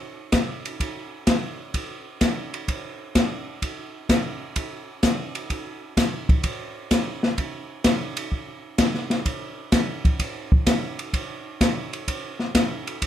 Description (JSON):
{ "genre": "jazz", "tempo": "128 BPM", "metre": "4/4", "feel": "swing 69% on 8ths", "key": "none", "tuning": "none", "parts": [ { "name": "open jazz drum kit", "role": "drums", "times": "0.3-13.1 s", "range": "hi-hat, kick drum, ride cymbal, snare drum", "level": "-22 LUFS", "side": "equal", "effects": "none" } ], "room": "little or no reverb", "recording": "close, detailed microphones", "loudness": "-22 LUFS", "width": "side -11 dB against mid", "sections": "0.0-13.1 A section", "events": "none", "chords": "none" }